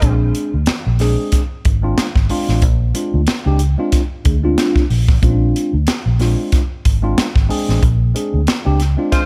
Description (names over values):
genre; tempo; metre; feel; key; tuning
funk; 92 BPM; 4/4; swing 56% on 16ths; Bb mixolydian; A4 = 441 Hz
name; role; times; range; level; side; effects
warm horn section; second line; 0.0-0.1, 9.1-9.2 s; Ab3 to C5; -26 LUFS; equal; none
mellow tine electric piano; stabs; 0.0-9.2 s; Ab3 to Ab4; -22 LUFS; equal; phaser
vintage muted fingered electric bass; bass; 0.0-8.9 s; Ab1 to D2; -18 LUFS; equal; none
crisp fusion drum kit; drums; 0.0-9.3 s; hi-hat, kick drum, snare drum; -19 LUFS; equal; none
room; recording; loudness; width
little or no reverb; none; -16 LUFS; mono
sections
0.0-9.3 A section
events
band accent 7.8-9.3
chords
0.0 Bb9